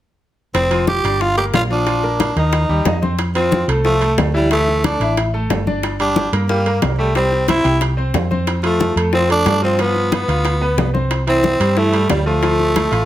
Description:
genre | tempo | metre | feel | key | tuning
latin, salsa | 182 BPM | 4/4 | straight | F major | A4 = 440 Hz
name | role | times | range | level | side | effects
growling tenor saxophone | melody | 0.5-13.1 s | G3 to G4 | -18 LUFS | right 1 dB | none
hollow-body short-scale fingered electric bass | bass | 0.5-13.1 s | F1 to G2 | -19 LUFS | equal | none
bongos | percussion | 0.5-13.1 s | none | -24 LUFS | left 6 dB | none
congas | percussion | 0.5-13.1 s | none | -24 LUFS | left 2 dB | none
timbales | percussion | 0.5-13.1 s | none | -26 LUFS | right 6 dB | none
bright baby grand piano | accompaniment | 0.7-13.1 s | Eb3 to G5 | -22 LUFS | left 1 dB | none
room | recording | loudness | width
moderate studio reverb, RT60 0.8 s | none | -14 LUFS | side -13 dB against mid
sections
0.5-3.2 A section; 3.2-13.1 B section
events
none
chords
0.5 Fsus2; 1.2 Gm7; 1.9 Bb; 2.5 Eb; 3.2 F; 4.5 Dsus2; 5.8 Gm; 7.2 C; 8.5 F; 9.8 G7; 11.1 C; 12.4 F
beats
| 0.55 0.88 1.21 1.54 | 1.87 2.20 2.53 2.86 | 3.19 3.52 3.85 4.18 | 4.51 4.84 5.17 5.51 | 5.84 6.17 6.50 6.83 | 7.16 7.49 7.82 8.14 | 8.47 8.80 9.13 9.46 | 9.79 10.12 10.45 10.78 | 11.11 11.44 11.77 12.10 | 12.43 12.76

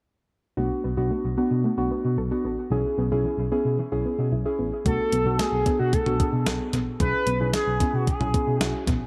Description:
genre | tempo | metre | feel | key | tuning
synth-pop | 112 BPM | 4/4 | straight | B dorian | A4 = 444 Hz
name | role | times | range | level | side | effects
muted felt-like synth keys | accompaniment | 0.6-8.8 s | B3 to G#4 | -30 LUFS | equal | chorus, dub echo
soft round pluck | arpeggios | 0.6-9.0 s | E3 to A4 | -34 LUFS | equal | chorus, dub echo
tine electric piano | bass | 0.6-9.0 s | A1 to B2 | -30 LUFS | equal | none
expressive synth lead | melody | 4.9-8.8 s | F#4 to B4 | -28 LUFS | equal | chorus, dub echo
clean 12-bit digital drum machine | drums | 4.9-9.0 s | hi-hat, kick drum, snare drum, toms | -28 LUFS | equal | none
room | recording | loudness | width
moderate plate reverb, RT60 1.7 s | echo-heavy mix | -24 LUFS | mono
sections
0.6-4.9 A section; 4.9-9.1 B section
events
none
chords
0.6 Bm7; 2.7 C#m7/B; 4.9 Bm7; 7.0 C#m7/B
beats
| 0.57 1.11 1.64 2.18 | 2.71 3.25 3.79 4.32 | 4.86 5.39 5.93 6.46 | 7.00 7.54 8.07 8.61

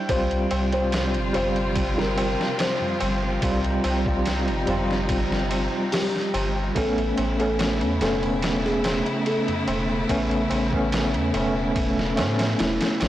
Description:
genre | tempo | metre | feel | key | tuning
trip hop | 72 BPM | 4/4 | straight | unclear | A4 = 440 Hz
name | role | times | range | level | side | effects
bell-like tine electric piano | accompaniment | 0.0-13.1 s | G3 to F4 | -25 LUFS | equal | medium stereo tremolo, tape echo
bowed-like drone | texture | 0.0-13.1 s | G5 | -38 LUFS | equal | built-in reverb
felt-muted upright piano | melody | 0.1-13.1 s | E4 to C5 | -28 LUFS | equal | tape echo
clear studio string section | sustained chords | 0.1-13.1 s | C3 to F4 | -30 LUFS | equal | none
soft dub sub bass | bass | 0.1-13.1 s | E1 to A2 | -28 LUFS | equal | tube saturation
trip hop sampler-style drum kit | drums | 0.1-13.1 s | hi-hat, kick drum, ride cymbal, snare drum | -28 LUFS | equal | none
tabla | percussion | 0.1-13.1 s | none | -35 LUFS | left 1 dB | none
room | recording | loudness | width
light reverb | blown-out, overdriven recording, vinyl crackle, overdrive | -21 LUFS | side -13 dB against mid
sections
0.0-13.1 A section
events
none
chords
0.1 Csus4; 6.8 Aadd9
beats
| 0.09 0.93 1.76 2.59 | 3.43 4.26 5.09 5.93 | 6.76 7.59 8.43 9.26 | 10.09 10.93 11.76 12.59

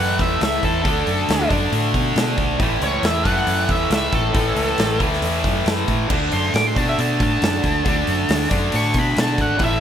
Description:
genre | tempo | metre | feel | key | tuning
blues rock power trio and southern rock | 137 BPM | 4/4 | straight | unclear | A4 = 440 Hz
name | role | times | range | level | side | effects
octave-fuzz lead guitar | melody | 0.0-9.8 s | A4 to D6 | -24 LUFS | equal | wah, distortion, tape echo
distorted electric guitar | riff | 0.0-9.8 s | A2 to D4 | -21 LUFS | equal | overdrive
vintage muted fingered electric bass | bass | 0.0-9.8 s | G#1 to B2 | -24 LUFS | equal | none
big rock drum kit | drums | 0.2-9.7 s | crash cymbal, hi-hat, kick drum, snare drum | -23 LUFS | equal | none
room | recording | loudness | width
light reverb | none | -17 LUFS | side -9 dB against mid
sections
0.0-9.8 A section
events
lead electric guitar solo 0.0-9.8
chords
0.0 A; 0.8 D; 2.6 A; 6.1 D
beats
0.41 | 0.85 1.28 1.72 2.16 | 2.60 3.04 3.47 3.91 | 4.35 4.79 5.22 5.66 | 6.10 6.54 6.97 7.41 | 7.85 8.29 8.73 9.16 | 9.60

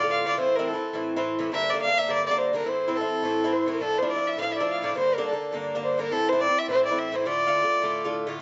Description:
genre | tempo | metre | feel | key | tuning
celtic folk | 209 BPM | 4/4 | swing 57% on 8ths | D minor | A4 = 438 Hz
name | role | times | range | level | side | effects
dark fiddle | melody | 0.0-8.1 s | A4 to F5 | -27 LUFS | equal | plate reverb
Irish bouzouki | accompaniment | 0.0-8.4 s | G2 to F4 | -30 LUFS | equal | none
room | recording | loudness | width
moderate studio ambience, RT60 0.5 s | nothing above 7.7 kHz | -25 LUFS | mono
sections
0.0-8.4 A section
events
none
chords
0.4 Am; 1.5 Gm; 2.7 Am; 3.8 Dmadd9; 5.0 Gm; 6.1 Am; 7.3 Dm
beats
0.09 | 0.38 0.67 0.95 1.24 | 1.52 1.81 2.10 2.38 | 2.67 2.96 3.24 3.53 | 3.81 4.10 4.39 4.67 | 4.96 5.25 5.53 5.82 | 6.11 6.39 6.68 6.97 | 7.25 7.54 7.83 8.12 | 8.40

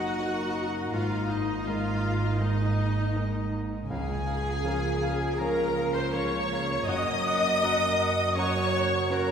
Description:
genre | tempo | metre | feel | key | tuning
cinematic | 81 BPM | 4/4 | rubato | Db major | A4 = 440 Hz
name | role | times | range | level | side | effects
warm symphonic violin section | melody | 0.0-9.3 s | Eb5 to Eb6 | -38 LUFS | left 2 dB | none
clear clarinet | second line | 0.0-9.3 s | Eb5 to Gb5 | -40 LUFS | left 1 dB | none
clear oboe | second line | 0.0-9.3 s | Eb4 to Eb5 | -36 LUFS | left 1 dB | none
mellow flute section | second line | 0.0-9.2 s | Bb5 | -43 LUFS | equal | none
warm symphonic violin section | second line | 0.0-9.3 s | Eb5 to Eb6 | -37 LUFS | left 3 dB | none
dark symphonic viola section | accompaniment | 0.0-9.3 s | Eb4 to Eb5 | -30 LUFS | equal | none
warm grand piano | accompaniment | 0.0-9.3 s | Db2 to Bb4 | -34 LUFS | equal | none
mellow French horn section | sustained chords | 0.0-9.3 s | Bb3 to Gb4 | -35 LUFS | equal | none
dark symphonic double bass section | bass | 0.0-9.3 s | Gb1 to Db2 | -33 LUFS | right 2 dB | none
warm symphonic cello section | bass | 0.0-9.3 s | Gb2 to Db3 | -35 LUFS | right 2 dB | none
timpani | percussion | 3.9-5.0 s | Db3 | -44 LUFS | equal | none
room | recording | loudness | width
wet concert hall reverb, RT60 2.3 s | recorded in a church or concert hall | -25 LUFS | side -7 dB against mid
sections
0.0-9.3 A section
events
none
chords
0.0 Ebmadd9/Gb; 0.9 Absus2; 3.9 Db6; 6.9 Gb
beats
0.19 | 0.93 1.67 2.40 3.15 | 3.90 4.64 5.40 6.14 | 6.88 7.63 8.38 9.12

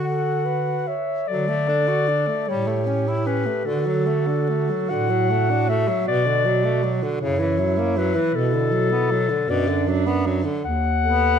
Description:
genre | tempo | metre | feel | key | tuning
classical, lyrical piece for single-reed quartet | 47-53 BPM (dotted quarters) | 6/8 | rubato | D major | A4 = 440 Hz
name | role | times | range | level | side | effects
dark clarinet | melody | 0.0-11.4 s | A4 to F#5 | -23 LUFS | left 6 dB | none
clear alto saxophone | second line | 0.0-11.4 s | D4 to C#5 | -27 LUFS | right 11 dB | none
clear tenor saxophone | accompaniment | 0.0-11.4 s | B2 to F#4 | -26 LUFS | left 1 dB | none
mellow bass clarinet | bass | 0.0-11.4 s | D#2 to D3 | -24 LUFS | right 2 dB | none
room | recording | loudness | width
moderate recital hall reverb, RT60 1.4 s | none | -19 LUFS | side -8 dB against mid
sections
0.0-1.3 A section; 1.3-11.4 B section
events
none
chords
0.0 D; 2.5 A7; 3.7 D; 6.1 Bm7; 7.2 F#7; 8.3 Bm; 10.6 B7/D#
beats
0.04 | 1.29 2.50 | 3.67 4.91 | 6.08 7.21 | 8.35 9.50 | 10.65

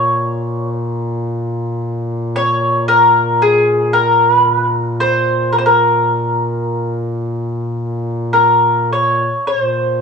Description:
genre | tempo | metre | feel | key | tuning
caucasian folk, Caucasian lament | 50-57 BPM | 3/4 | rubato | Bb minor | A4 = 441 Hz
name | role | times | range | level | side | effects
mandolin | melody | 0.0-10.0 s | Ab4 to Db5 | -12 LUFS | equal | none
dark duduk | drone | 0.0-10.0 s | Bb2 | -20 LUFS | left 1 dB | cassette tape
room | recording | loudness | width
moderate spring reverb, RT60 1.6 s, studio reverb | home recording on cassette, small room ambience | -13 LUFS | side -5 dB against mid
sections
0.0-9.5 A section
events
none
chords
none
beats
0.73 1.81 | 2.87 3.93 4.99 | 6.07 7.18 8.34 | 9.49

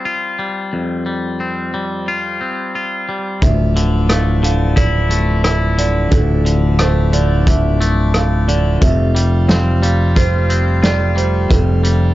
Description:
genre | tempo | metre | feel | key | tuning
post-rock | 89 BPM | 4/4 | straight | D minor | A4 = 436 Hz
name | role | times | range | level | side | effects
twangy electric guitar | arpeggios | 0.0-12.1 s | D2 to F4 | -19 LUFS | left 2 dB | slapback echo
pipe organ, plenum | sustained chords | 3.4-12.1 s | E3 to F4 | -24 LUFS | left 2 dB | none
felt-muted upright piano | arpeggios | 3.4-12.1 s | A4 to F5 | -24 LUFS | right 7 dB | slapback echo
growling fingered electric bass | bass | 3.4-12.1 s | D1 to F1 | -15 LUFS | equal | overdrive
loose indie drum kit | drums | 3.4-12.0 s | hi-hat, kick drum, rim click, snare drum | -16 LUFS | equal | none
room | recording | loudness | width
small room ambience | dark, warm production, nothing above 7.7 kHz | -13 LUFS | side -16 dB against mid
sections
0.0-3.4 A section; 3.4-12.1 A section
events
none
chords
0.0 Fsus2; 3.4 Dmadd9; 8.8 Fadd9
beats
0.05 | 0.72 1.40 2.07 2.75 | 3.42 4.10 4.77 5.44 | 6.12 6.79 7.46 8.14 | 8.81 9.48 10.16 10.83 | 11.51

